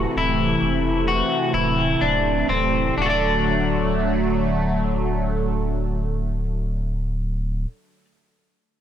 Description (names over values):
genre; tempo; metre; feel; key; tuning
dream pop; 61-67 BPM; 4/4; straight; D mixolydian; A4 = 440 Hz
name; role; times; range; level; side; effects
phased analog pad; sustained chords; 0.0-7.7 s; C3 to A3; -23 LUFS; right 1 dB; phaser, chorus
electric guitar at the edge of break-up; arpeggios; 0.0-8.0 s; C4 to D5; -22 LUFS; left 2 dB; wide subtle chorus, tape echo
warm sub bass; bass; 0.0-7.7 s; D1 to E1; -25 LUFS; equal; none
room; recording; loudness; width
moderate plate reverb, RT60 2.8 s; none; -19 LUFS; side -10 dB against mid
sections
0.0-3.0 A section; 3.0-6.9 B section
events
slowing down 0.0-3.0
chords
0.0 Am/D; 3.0 D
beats
0.17 1.07 2.01 | 2.97 3.95 4.93 5.92